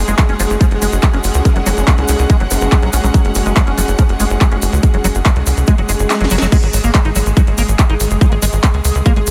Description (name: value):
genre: psychedelic trance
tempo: 142 BPM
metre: 4/4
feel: straight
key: unclear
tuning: A4 = 443 Hz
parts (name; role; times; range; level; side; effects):
- pulsing gated texture; sustained chords; 0.0-9.3 s; G#3 to G#4; -25 LUFS; equal; chorus, built-in reverb, sidechain pumping
- tight sequencer bass; bass; 0.0-9.3 s; F#1 to C#2; -18 LUFS; equal; none
- dark chamber string section; texture; 0.0-6.5 s; C#4 to G#5; -27 LUFS; equal; sidechain pumping
- liquid acid bass; riff; 0.1-9.2 s; E#3 to D#4; -25 LUFS; equal; chorus, vintage 12-bit sampler grit, sidechain pumping, diffuse ambient delay
- drum and bass drum kit; drums; 0.1-9.3 s; crash cymbal, handclaps, hi-hat, snare drum; -24 LUFS; equal; overdrive
- egg shaker; percussion; 0.1-9.3 s; none; -27 LUFS; equal; none
- electronic kick drum; drums; 0.2-9.1 s; none; -13 LUFS; equal; overdrive
- vowel-sweep wobble bass; second line; 1.5-2.7, 8.2-8.3 s; A#3 to C#4; -35 LUFS; equal; none
- swell; sound effects; 5.8-6.5 s; none; -31 LUFS; equal; none
room: light reverb, digital ambience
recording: none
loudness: -13 LUFS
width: mono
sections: 0.0-6.5 A section; 6.5-9.3 B section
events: kick drops out 6.1-6.5; drum fill 6.1-6.5; drop 6.5-9.3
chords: 0.0 F#5; 6.5 G#5